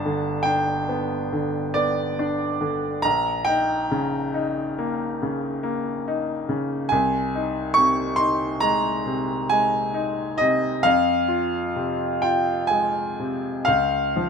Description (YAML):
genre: classical, romantic nocturne for solo piano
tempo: 39-48 BPM (dotted quarters)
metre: 9/8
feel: rubato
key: Ab major from 3.0 s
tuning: A4 = 441 Hz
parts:
  - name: clear grand piano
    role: solo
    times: 0.0-14.3 s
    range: G1 to Db6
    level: -21 LUFS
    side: equal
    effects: none
room: little or no reverb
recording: close, detailed microphones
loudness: -21 LUFS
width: side -6 dB against mid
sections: 0.0-14.3 A section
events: none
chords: 0.0 G; 3.0 Eb7/Bb; 6.9 Ab/C; 10.8 Fm; 13.7 Bbm/Db (rootless)